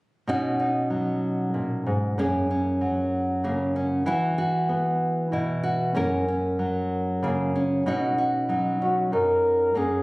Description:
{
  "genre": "acoustic folk-pop ballad",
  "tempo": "95 BPM",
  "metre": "3/4",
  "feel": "straight",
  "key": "B major",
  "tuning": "A4 = 439 Hz",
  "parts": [
    { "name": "nylon-string guitar", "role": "accompaniment", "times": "0.3-10.0 s", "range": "F#2 to A#4", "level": "-23 LUFS", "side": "equal", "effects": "none" },
    { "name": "breathy flugelhorn", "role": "melody", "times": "8.8-10.0 s", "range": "F#4 to A#4", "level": "-21 LUFS", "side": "equal", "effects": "none" }
  ],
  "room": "light reverb",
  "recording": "recorded on a phone in the room, club reverb, compression",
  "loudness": "-22 LUFS",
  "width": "side -23 dB against mid",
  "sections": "0.3-7.9 A section; 7.9-10.0 B section",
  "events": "none",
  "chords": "0.3 Badd9; 2.2 F#add9; 4.1 Esus2; 6.0 F#; 7.9 Badd9"
}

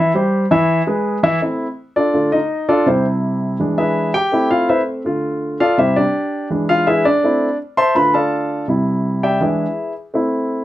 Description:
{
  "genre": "latin",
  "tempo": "165 BPM",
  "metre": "4/4",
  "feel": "straight",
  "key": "A minor",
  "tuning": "A4 = 439 Hz",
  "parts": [
    { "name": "dark grand piano", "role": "solo", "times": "0.0-10.6 s", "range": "C3 to C6", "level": "-14 LUFS", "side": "equal", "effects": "none" }
  ],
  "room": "moderate studio reverb, RT60 0.5 s",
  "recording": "dark, warm production",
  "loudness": "-15 LUFS",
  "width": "side -14 dB against mid",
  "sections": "0.0-1.4 A section; 1.4-10.6 B section",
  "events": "grand piano solo 1.4-10.6",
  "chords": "0.0 C; 0.7 E; 1.4 Am; 2.1 Dm; 2.9 C; 3.6 E7; 4.3 Amadd9; 5.1 Dm; 5.8 Cadd9; 6.5 E7; 7.2 Am; 8.0 Dm; 8.7 Cadd9; 9.4 E7; 10.1 Am"
}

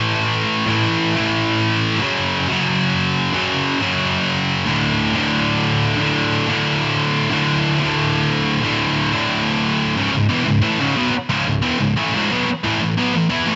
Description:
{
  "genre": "metal",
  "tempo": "181 BPM",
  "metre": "4/4",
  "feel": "straight",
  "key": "C# phrygian",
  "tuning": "A4 = 440 Hz",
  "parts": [
    { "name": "scooped high-gain guitar", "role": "solo", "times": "0.0-13.6 s", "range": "C#2 to E4", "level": "-18 LUFS", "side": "equal", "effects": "distortion, cassette tape, tape echo" }
  ],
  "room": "light reverb, digital ambience",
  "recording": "home recording on cassette, nothing above 7.7 kHz",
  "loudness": "-18 LUFS",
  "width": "mono",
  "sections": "0.0-10.0 A section; 10.0-13.6 B section",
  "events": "none",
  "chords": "0.0 A5; 2.0 F#5; 4.7 D5; 10.0 C#m; 12.6 A5"
}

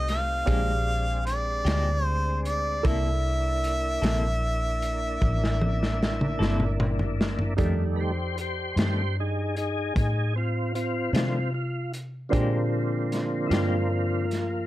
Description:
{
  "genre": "slow blues",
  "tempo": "51 BPM (dotted quarters)",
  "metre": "12/8",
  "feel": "straight",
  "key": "unclear",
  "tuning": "A4 = 436 Hz",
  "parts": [
    { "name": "clear harmonica", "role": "melody", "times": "0.0-6.8 s", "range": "D5 to F5", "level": "-29 LUFS", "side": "equal", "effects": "overdrive" },
    { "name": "clear concert grand piano", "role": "accompaniment", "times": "0.0-14.7 s", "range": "D4 to D6", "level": "-36 LUFS", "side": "right 6 dB", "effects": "none" },
    { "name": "tonewheel organ", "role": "sustained chords", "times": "0.0-14.7 s", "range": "D3 to C5", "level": "-30 LUFS", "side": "equal", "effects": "chorus vibrato, slow rotary speaker" },
    { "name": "vintage muted fingered electric bass", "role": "bass", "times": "0.0-14.7 s", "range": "G1 to C3", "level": "-28 LUFS", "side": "equal", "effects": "none" },
    { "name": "crunchy breakbeat drum kit", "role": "drums", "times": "0.1-14.5 s", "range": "hi-hat, kick drum, snare drum, toms", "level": "-28 LUFS", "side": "equal", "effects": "none" },
    { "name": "clean electric guitar", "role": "accompaniment", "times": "0.5-13.8 s", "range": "F2 to A4", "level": "-32 LUFS", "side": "left 4 dB", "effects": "tremolo" }
  ],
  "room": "light reverb",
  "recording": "none",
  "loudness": "-24 LUFS",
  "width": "side -15 dB against mid",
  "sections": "0.0-7.6 A section; 7.6-14.7 B section",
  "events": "drum fill 5.2-7.6; tonewheel organ solo 7.6-14.7",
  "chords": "0.5 Bb13; 2.8 C13; 7.6 F13; 12.3 Bb13"
}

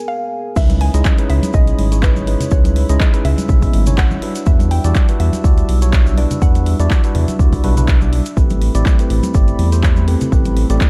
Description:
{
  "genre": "deep house",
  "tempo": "123 BPM",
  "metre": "4/4",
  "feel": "swing 54% on 16ths",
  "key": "unclear",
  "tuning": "A4 = 439 Hz",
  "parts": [
    { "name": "dark analog pad", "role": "sustained chords", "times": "0.0-10.9 s", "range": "B3 to E6", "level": "-32 LUFS", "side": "equal", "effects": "chorus, sidechain pumping" },
    { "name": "mallet-like synth pluck", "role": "melody", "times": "0.1-7.8 s", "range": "B4 to G#5", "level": "-30 LUFS", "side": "equal", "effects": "chorus, phaser, tape echo" },
    { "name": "tine electric piano", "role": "stabs", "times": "0.6-10.9 s", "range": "G3 to E5", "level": "-25 LUFS", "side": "equal", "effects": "sidechain pumping, tape echo" },
    { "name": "round analog bass", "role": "bass", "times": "0.6-10.8 s", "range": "G1 to E2", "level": "-18 LUFS", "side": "equal", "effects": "sidechain pumping" },
    { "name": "electronic kick drum", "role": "drums", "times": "0.6-10.9 s", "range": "none", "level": "-16 LUFS", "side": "equal", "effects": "none" },
    { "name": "house drum kit", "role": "drums", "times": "0.6-10.9 s", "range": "crash cymbal, handclaps, hi-hat", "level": "-30 LUFS", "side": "equal", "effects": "low-pass filter on cymbals, low-pass filter on hats, low-pass filter on snare" },
    { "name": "tube shaker", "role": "percussion", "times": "0.6-10.9 s", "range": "none", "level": "-38 LUFS", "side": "equal", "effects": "none" },
    { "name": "congas", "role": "percussion", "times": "0.7-10.9 s", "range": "none", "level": "-28 LUFS", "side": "equal", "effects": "none" }
  ],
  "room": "little or no reverb",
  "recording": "none",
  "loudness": "-14 LUFS",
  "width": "mono",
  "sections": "0.6-10.9 A section",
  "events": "break 0.1-0.6; drop 0.6-10.9",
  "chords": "0.0 G#madd9; 0.6 C#m9; 4.2 Em9; 8.4 Am9"
}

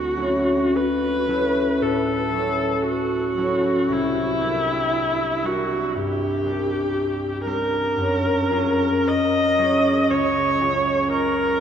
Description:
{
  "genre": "classical, impressionist duo for viola and harp",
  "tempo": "58 BPM",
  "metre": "4/4",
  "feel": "rubato",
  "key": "unclear",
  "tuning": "A4 = 439 Hz",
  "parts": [
    { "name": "warm viola", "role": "melody", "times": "0.0-11.6 s", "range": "E4 to Eb5", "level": "-21 LUFS", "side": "equal", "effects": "none" },
    { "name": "concert harp", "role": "accompaniment", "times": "0.0-11.6 s", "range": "C2 to Bb4", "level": "-22 LUFS", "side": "equal", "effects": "none" }
  ],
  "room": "wet cathedral reverb, RT60 5.4 s",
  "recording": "in a vast, echoing space",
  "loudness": "-19 LUFS",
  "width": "side -8 dB against mid",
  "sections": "0.0-11.6 A section",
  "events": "none",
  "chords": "0.0 Dmaj9; 3.9 C9; 8.0 F#maj9"
}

